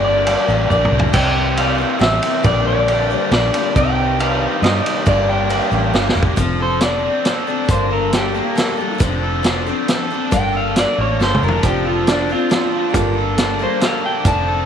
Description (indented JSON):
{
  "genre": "folk rock and heartland rock",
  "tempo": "137 BPM",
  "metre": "3/4",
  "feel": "straight",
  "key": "G minor",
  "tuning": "A4 = 437 Hz",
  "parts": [
    { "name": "electric guitar through a small old amp", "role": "melody", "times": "0.0-14.7 s", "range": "D4 to A5", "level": "-20 LUFS", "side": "left 1 dB", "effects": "spring reverb" },
    { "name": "dark grand piano", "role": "accompaniment", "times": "0.0-6.2, 11.6-14.6 s", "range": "Bb3 to F5", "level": "-29 LUFS", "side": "right 11 dB", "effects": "none" },
    { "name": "picked steel-string acoustic guitar", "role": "accompaniment", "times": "0.0-14.7 s", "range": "G2 to A4", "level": "-24 LUFS", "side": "left 12 dB", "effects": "none" },
    { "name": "raw garage guitar", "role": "riff", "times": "0.0-14.7 s", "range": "G2 to A4", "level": "-22 LUFS", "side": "right 2 dB", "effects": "overdrive" },
    { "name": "fingered electric bass", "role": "bass", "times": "0.0-14.7 s", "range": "F1 to G2", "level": "-21 LUFS", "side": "right 1 dB", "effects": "none" },
    { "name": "vintage drum kit", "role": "drums", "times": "0.3-14.4 s", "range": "crash cymbal, hi-hat, kick drum, ride cymbal, snare drum, toms", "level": "-20 LUFS", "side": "right 1 dB", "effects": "none" }
  ],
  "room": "light reverb",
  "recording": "1960s-style stereo with parts hard left and right",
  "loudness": "-14 LUFS",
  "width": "side -8 dB against mid",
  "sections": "0.0-6.4 A section; 6.4-14.7 B section",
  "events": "drum fill 0.7-1.1, 5.9-6.4, 11.2-11.6; clean electric guitar solo 6.4-14.7",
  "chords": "0.0 Gm; 1.1 C; 2.5 Gm/Bb; 3.8 Cm; 5.1 Gm; 6.4 F6; 7.7 Gmadd9; 9.0 F6; 10.3 Gmadd9; 11.6 F6; 12.9 Gmadd9"
}